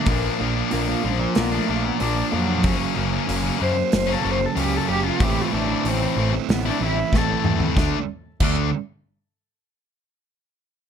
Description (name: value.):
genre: quiet-loud alternative rock.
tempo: 94 BPM.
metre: 4/4.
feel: straight.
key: unclear.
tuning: A4 = 439 Hz.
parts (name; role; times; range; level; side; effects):
warm cello; melody; 0.0-7.5 s; F3 to C5; -26 LUFS; left 2 dB; none.
electric guitar through a small old amp; arpeggios; 0.0-2.6 s; Bb2 to Bb3; -30 LUFS; left 2 dB; phaser.
distorted electric guitar; riff; 0.0-8.7 s; F#2 to E4; -25 LUFS; left 15 dB; overdrive.
thick fuzz guitar; riff; 0.0-8.7 s; F#2 to E4; -26 LUFS; right 12 dB; distortion.
growling picked electric bass; bass; 0.1-8.7 s; F#1 to F#2; -26 LUFS; equal; overdrive.
loose indie drum kit; drums; 0.1-8.6 s; crash cymbal, hi-hat, kick drum, snare drum, toms; -24 LUFS; equal; none.
room: light reverb.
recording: none.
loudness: -19 LUFS.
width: side -8 dB against mid.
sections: 0.0-7.8 A section; 7.8-10.3 B section.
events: cello solo 0.0-7.8; drum fill 7.1-7.8.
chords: 0.1 Bb; 2.6 F#; 5.2 Am; 7.8 D5.